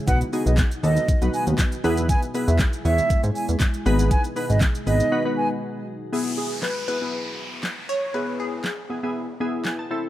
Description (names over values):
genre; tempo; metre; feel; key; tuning
dance-pop; 119 BPM; 4/4; straight; E major; A4 = 441 Hz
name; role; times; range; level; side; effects
glassy FM pad; sustained chords; 0.0-6.1 s; B2 to G#4; -33 LUFS; equal; ensemble chorus, built-in reverb, sidechain pumping
mellow silver concert flute; melody; 0.1-5.5 s; D#5 to G#5; -26 LUFS; right 3 dB; sidechain pumping
glassy digital keys; accompaniment; 0.1-10.1 s; B3 to A5; -27 LUFS; left 2 dB; chorus, sidechain pumping
chorused synth bass; bass; 0.1-5.0 s; G#1 to G#2; -20 LUFS; equal; sidechain pumping
pop drum kit; drums; 0.1-9.8 s; handclaps, hi-hat, kick drum, shaker, snare drum; -23 LUFS; equal; none
downlifter; sound effects; 6.1-10.1 s; none; -34 LUFS; left 1 dB; none
glassy wavetable pluck; melody; 6.4-9.9 s; G#4 to C#5; -28 LUFS; equal; chorus
room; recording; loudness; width
little or no reverb; none; -20 LUFS; side -14 dB against mid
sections
0.0-6.1 A section; 6.1-10.1 B section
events
drop 0.0-6.1; break 5.1-6.1; synth keys fill 9.2-10.1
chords
0.1 B; 1.8 E; 3.9 G#m; 5.1 B; 6.1 E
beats
| 0.08 0.58 1.08 1.59 | 2.09 2.60 3.10 3.61 | 4.11 4.61 5.12 5.62 | 6.13 6.63 7.13 7.64 | 8.14 8.65 9.15 9.66